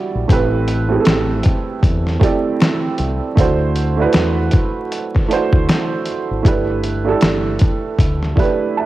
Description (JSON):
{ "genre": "lo-fi hip hop", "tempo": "78 BPM", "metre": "4/4", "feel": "swing 59% on 16ths", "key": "unclear", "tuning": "A4 = 440 Hz", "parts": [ { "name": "dark upright piano", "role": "accompaniment", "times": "0.0-8.9 s", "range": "G3 to A5", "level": "-18 LUFS", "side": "right 4 dB", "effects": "cassette tape" }, { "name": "deep dub fingered electric bass", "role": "bass", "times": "0.2-8.3 s", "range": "G1 to E2", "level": "-20 LUFS", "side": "equal", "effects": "none" }, { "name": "dusty soul sampler-style drum kit", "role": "drums", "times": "0.3-8.6 s", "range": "hi-hat, kick drum, snare drum", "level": "-16 LUFS", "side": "equal", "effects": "overdrive, cassette tape" }, { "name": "finger snap", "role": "percussion", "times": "1.1-7.4 s", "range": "none", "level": "-40 LUFS", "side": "left 8 dB", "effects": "none" } ], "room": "light reverb", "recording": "home recording on cassette, vinyl crackle", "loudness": "-14 LUFS", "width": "side -15 dB against mid", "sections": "0.0-8.9 A section", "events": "none", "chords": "0.3 Am7; 3.4 D7; 6.4 G69" }